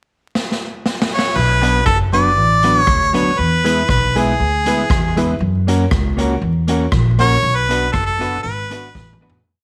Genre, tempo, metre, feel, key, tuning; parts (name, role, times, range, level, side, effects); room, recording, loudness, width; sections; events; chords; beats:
ska; 119 BPM; 4/4; straight; B dorian; A4 = 440 Hz
street-band drum kit; drums; 0.4-9.4 s; crash cymbal, hi-hat, kick drum, rim click, snare drum, toms; -23 LUFS; equal
clear harmonica; melody; 1.1-9.2 s; G#4 to D5; -19 LUFS; equal
upright bass; bass; 1.4-9.4 s; F#1 to F#2; -21 LUFS; equal
mellow electric guitar; accompaniment; 1.6-9.4 s; F#3 to F#4; -24 LUFS; equal
warm upright piano; stabs; 1.6-9.4 s; C#4 to B4; -27 LUFS; equal
light reverb, studio reverb; vinyl crackle; -16 LUFS; mono
0.0-1.4 pickup bar; 1.4-9.5 A section
drum fill 0.3-1.4, 9.0-9.5; fade-out 7.4-9.5
0.0 N.C.; 1.4 Bm; 3.4 E; 5.4 F#; 7.4 Bm
0.35 0.86 | 1.36 1.87 2.37 2.88 | 3.39 3.89 4.40 4.91 | 5.41 5.92 6.42 6.93 | 7.44 7.94 8.45 8.95